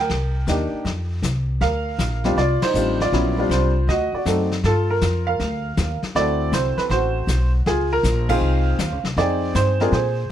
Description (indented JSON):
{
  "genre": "jazz piano trio",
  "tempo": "159 BPM",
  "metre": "4/4",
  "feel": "swing 66% on 8ths",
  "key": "Bb major",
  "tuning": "A4 = 441 Hz",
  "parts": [
    { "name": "warm baby grand piano", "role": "melody", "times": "0.0-10.3 s", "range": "Gb3 to G5", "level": "-21 LUFS", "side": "right 1 dB", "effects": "none" },
    { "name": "upright bass", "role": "bass", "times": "0.0-10.3 s", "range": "A1 to Bb2", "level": "-22 LUFS", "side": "equal", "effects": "none" },
    { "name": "vintage brush drum kit", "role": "drums", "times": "0.1-10.3 s", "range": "brushed snare drum, crash cymbal, hi-hat, kick drum, ride cymbal, snare drum", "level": "-28 LUFS", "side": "left 3 dB", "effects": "none" }
  ],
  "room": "light reverb",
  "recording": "faint mains hum",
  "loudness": "-18 LUFS",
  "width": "side -10 dB against mid",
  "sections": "0.0-4.6 A section; 4.6-10.3 B section",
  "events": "band accent 2.6, 8.2",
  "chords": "0.1 Cm7; 0.9 F5; 1.6 Bb69; 3.9 D7b9; 4.6 Gm7; 6.1 D9; 7.7 Dbmaj7; 9.2 Fm9"
}